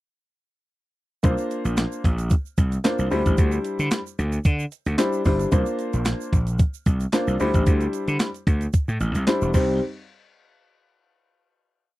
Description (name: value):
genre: early-eighties boogie funk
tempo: 112 BPM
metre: 4/4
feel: straight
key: unclear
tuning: A4 = 440 Hz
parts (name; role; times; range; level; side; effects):
- warm concert grand piano; accompaniment; 1.2-9.8 s; G3 to C5; -24 LUFS; left 1 dB; none
- gritty slap bass; bass; 1.2-9.8 s; E1 to D3; -23 LUFS; equal; overdrive
- clean 12-bit digital drum machine; drums; 1.2-9.7 s; crash cymbal, handclaps, hi-hat, kick drum, snare drum; -20 LUFS; equal; none
- egg shaker; percussion; 1.2-9.8 s; none; -44 LUFS; right 20 dB; none
room: little or no reverb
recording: dry, close 1970s-style studio recording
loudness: -20 LUFS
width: side -17 dB against mid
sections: 1.2-9.8 verse; 9.8-12.0 final hit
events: none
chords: 1.2 C9sus4; 3.1 D9sus4; 5.5 C9sus4; 7.4 D9sus4; 9.5 Cm; 9.8 N.C.